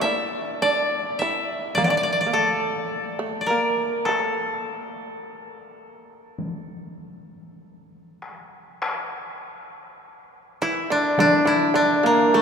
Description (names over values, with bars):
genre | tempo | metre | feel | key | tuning
japanese traditional, Japanese chamber music | 52 BPM | 4/4 | rubato | unclear | A4 = 441 Hz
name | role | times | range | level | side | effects
koto | melody | 0.0-12.4 s | A3 to G5 | -21 LUFS | left 1 dB | none
shamisen | second line | 0.0-12.4 s | D3 to E4 | -26 LUFS | right 2 dB | none
taiko ensemble | percussion | 1.8-11.4 s | none | -32 LUFS | left 1 dB | none
room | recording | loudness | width
wet cathedral reverb, RT60 5.2 s | recorded in a church or concert hall | -20 LUFS | side -6 dB against mid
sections
0.0-8.8 A section; 8.8-12.4 B section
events
none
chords
none